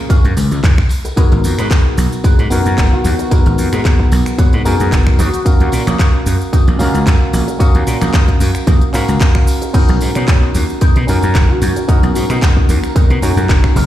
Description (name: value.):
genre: nu-disco, nu disco.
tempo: 112 BPM.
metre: 4/4.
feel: swing 54% on 16ths.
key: unclear.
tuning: A4 = 440 Hz.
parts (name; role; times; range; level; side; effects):
tine electric piano; accompaniment; 0.0-13.7 s; Cb4 to A#5; -19 LUFS; equal; ping-pong delay.
electric guitar with an envelope filter; riff; 0.1-13.9 s; Cb4 to Db5; -24 LUFS; left 1 dB; wide subtle chorus, ping-pong delay.
electronic kick drum; drums; 0.1-13.7 s; none; -11 LUFS; equal; studio reverb.
house drum kit; drums; 0.1-13.9 s; crash cymbal, finger snaps, handclaps, hi-hat, shaker; -24 LUFS; equal; studio reverb.
tambourine; percussion; 0.1-13.9 s; none; -34 LUFS; left 2 dB; none.
gritty slap bass; bass; 0.2-13.9 s; Gb1 to B2; -15 LUFS; equal; overdrive, sidechain pumping.
wide unison lead; melody; 2.9-5.7, 11.5-13.4 s; Gb4 to A#4; -24 LUFS; left 1 dB; ping-pong delay.
room: digital ambience.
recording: played on a big sound system in a bare room, large studio reverb.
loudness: -10 LUFS.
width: side -13 dB against mid.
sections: 0.0-13.9 A section.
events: none.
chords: 0.0 Gbmaj7; 1.2 Abm9; 5.2 Ebm7; 9.7 Bmaj7.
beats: 0.10 0.64 | 1.17 1.71 2.24 2.78 | 3.31 3.85 4.39 4.92 | 5.46 5.99 6.53 7.07 | 7.60 8.14 8.67 9.21 | 9.74 10.28 10.81 11.35 | 11.89 12.42 12.96 13.49.